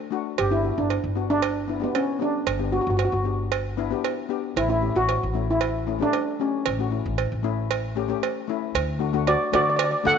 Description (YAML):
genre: calypso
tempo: 115 BPM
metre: 4/4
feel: straight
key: D major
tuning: A4 = 440 Hz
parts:
  - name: steel pan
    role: accompaniment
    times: 0.1-10.1 s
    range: A3 to A4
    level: -29 LUFS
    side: left 14 dB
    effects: none
  - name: steel pan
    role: melody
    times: 0.4-10.2 s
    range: B3 to F#5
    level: -24 LUFS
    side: right 1 dB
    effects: none
  - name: upright bass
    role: bass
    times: 0.4-10.2 s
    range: G1 to D3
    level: -28 LUFS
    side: equal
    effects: none
  - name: cowbell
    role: percussion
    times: 0.4-9.9 s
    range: none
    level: -29 LUFS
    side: right 12 dB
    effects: none
room: light reverb, small room ambience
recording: 1960s-style stereo with parts hard left and right, nothing above 7.8 kHz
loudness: -22 LUFS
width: side -7 dB against mid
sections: 0.0-8.7 A section; 8.7-10.2 B section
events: none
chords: 0.4 G; 4.6 A; 8.7 D